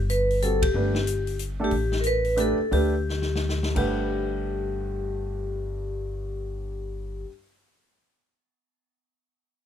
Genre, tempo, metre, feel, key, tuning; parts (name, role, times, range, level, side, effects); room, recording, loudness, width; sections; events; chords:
jazz, small-group swing and bop; 130-186 BPM; 3/4; swing 63% on 8ths; G major; A4 = 439 Hz
upright bass; bass; 0.0-7.2 s; G1 to D2; -28 LUFS; equal
vibraphone with medium hard mallets; melody; 0.1-7.2 s; G4 to B4; -28 LUFS; left 2 dB
swinging big-band drum kit; drums; 0.1-3.8 s; crash cymbal, hi-hat, kick drum, ride cymbal, snare drum; -31 LUFS; left 1 dB
warm grand piano; accompaniment; 0.4-7.3 s; G2 to F#5; -30 LUFS; right 3 dB
little or no reverb; close, detailed microphones; -24 LUFS; side -9 dB against mid
0.0-1.7 A section; 1.7-3.9 B section; 3.9-6.7 C section
band accent 0.6; slowing down 1.7-3.9; drum fill 3.1-3.9
0.0 G5; 1.7 A9sus4; 2.7 Dsus4; 3.7 Gmaj7